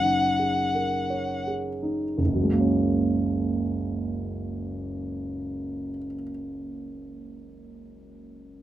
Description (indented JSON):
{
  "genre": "classical, impressionist duo for violin and grand piano",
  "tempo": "43 BPM",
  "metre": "4/4",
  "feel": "rubato",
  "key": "F# major",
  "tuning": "A4 = 439 Hz",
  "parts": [
    { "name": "warm violin", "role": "melody", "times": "0.0-1.5 s", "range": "F#5", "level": "-25 LUFS", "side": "left 2 dB", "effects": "none" },
    { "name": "dark grand piano", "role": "accompaniment", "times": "0.0-8.6 s", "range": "F#1 to C#5", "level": "-26 LUFS", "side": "right 2 dB", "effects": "none" }
  ],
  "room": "moderate studio ambience, RT60 0.5 s",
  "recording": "none",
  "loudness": "-24 LUFS",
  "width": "side -13 dB against mid",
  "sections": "0.0-2.2 A section; 2.2-7.8 B section",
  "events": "slowing down 0.0-2.2",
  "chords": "0.0 F#69; 2.2 F#add9"
}